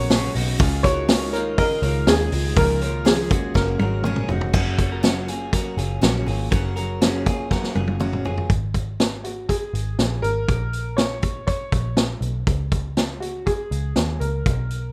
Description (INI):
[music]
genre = jangly indie pop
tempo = 121 BPM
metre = 4/4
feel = straight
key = F# major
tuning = A4 = 440 Hz
[part]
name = clear upright piano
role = melody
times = 0.0-4.3, 9.2-14.9 s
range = F#4 to C#5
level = -28 LUFS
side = equal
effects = none
[part]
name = picked steel-string acoustic guitar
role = accompaniment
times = 0.0-8.5 s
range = F#2 to D#5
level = -32 LUFS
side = equal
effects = none
[part]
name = hollow soft pad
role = sustained chords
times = 0.0-4.5 s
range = C#3 to E#5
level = -36 LUFS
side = equal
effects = none
[part]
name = electric guitar through a small old amp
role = arpeggios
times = 0.0-8.5 s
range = C#4 to D#5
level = -32 LUFS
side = equal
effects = subtle chorus, slapback echo
[part]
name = vintage muted picked electric bass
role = bass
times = 0.0-14.9 s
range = E#1 to D#2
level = -28 LUFS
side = equal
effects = none
[part]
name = vintage drum kit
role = drums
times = 0.1-14.8 s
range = crash cymbal, hi-hat, kick drum, snare drum, toms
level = -24 LUFS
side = equal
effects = none
[sound]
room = light reverb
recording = rough home demo mix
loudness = -22 LUFS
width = mono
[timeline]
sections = 0.0-4.5 A section; 4.5-8.5 B section; 8.5-14.9 C section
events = drum fill 3.6-4.5, 7.5-8.5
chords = 0.0 Bsus2; 0.6 C#add9; 3.6 F#add9; 8.5 N.C.; 10.5 A#m; 12.5 C#5